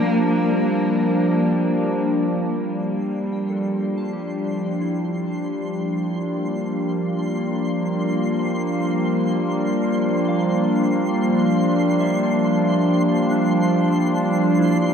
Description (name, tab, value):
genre	ambient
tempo	free time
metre	none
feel	none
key	G dorian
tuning	A4 = 440 Hz
part	clear cello	melody	0.0-1.5 s	Bb3	-27 LUFS	equal	tape echo
part	warbly tape-like pad	sustained chords	0.0-14.9 s	F3 to D4	-19 LUFS	equal	chorus, built-in reverb
part	twinkling granular texture	texture	3.5-14.9 s	C6	-33 LUFS	left 1 dB	built-in reverb
part	soft synth bell	arpeggios	3.3-14.9 s	D4 to A5	-37 LUFS	equal	none
room	wet cathedral reverb, RT60 6.7 s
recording	dark, warm production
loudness	-18 LUFS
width	side -7 dB against mid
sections	0.0-2.4 A section; 2.4-14.9 B section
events	fade-in on synth texture 2.4-14.9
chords	0.0 Gm7